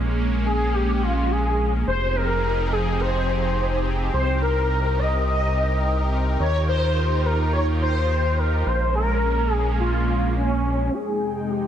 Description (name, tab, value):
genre	synthwave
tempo	106 BPM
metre	4/4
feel	straight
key	F minor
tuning	A4 = 441 Hz
part	lush unison pad	sustained chords	0.0-11.7 s	F2 to G5	-27 LUFS	equal	chorus, phaser, vintage 12-bit sampler grit
part	round analog bass	bass	0.0-10.9 s	F1 to Eb2	-23 LUFS	equal	none
part	expressive synth lead	melody	0.5-11.7 s	Db4 to Eb5	-24 LUFS	left 1 dB	ensemble chorus, digital delay
room	light reverb, digital ambience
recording	dense, heavily limited modern master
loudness	-20 LUFS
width	side -10 dB against mid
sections	0.0-10.9 A section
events	none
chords	0.0 Bbm7; 1.9 Fm7; 4.1 Cm7; 6.4 Ebadd9; 8.7 Bbm7; 10.9 Fm7